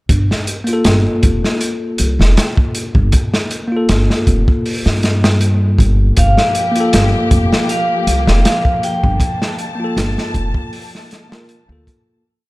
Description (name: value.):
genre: trip hop.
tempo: 79 BPM.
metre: 4/4.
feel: swing 53% on 16ths.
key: G minor.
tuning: A4 = 440 Hz.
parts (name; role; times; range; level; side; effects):
upright bass; bass; 0.1-11.8 s; F1 to G2; -15 LUFS; equal; none.
crunchy breakbeat drum kit; drums; 0.1-12.1 s; hi-hat, kick drum, snare drum; -16 LUFS; equal; none.
bell-like tine electric piano; accompaniment; 0.6-12.2 s; Bb3 to Bb4; -20 LUFS; left 1 dB; tremolo, tape echo.
vibraphone with medium mallets; melody; 6.2-9.6 s; F5 to G5; -19 LUFS; equal; tape echo.
rich studio string section; sustained chords; 6.2-12.2 s; F3 to A5; -23 LUFS; left 1 dB; none.
room: light reverb, small room ambience.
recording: dark, warm production.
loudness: -12 LUFS.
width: side -20 dB against mid.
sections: 0.1-12.2 groove.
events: fade-out 8.2-12.2.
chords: 0.1 Gm7.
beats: | 0.09 0.85 1.61 2.37 | 3.13 3.89 4.65 5.41 | 6.17 6.93 7.69 8.45 | 9.21 9.97 10.72 11.48.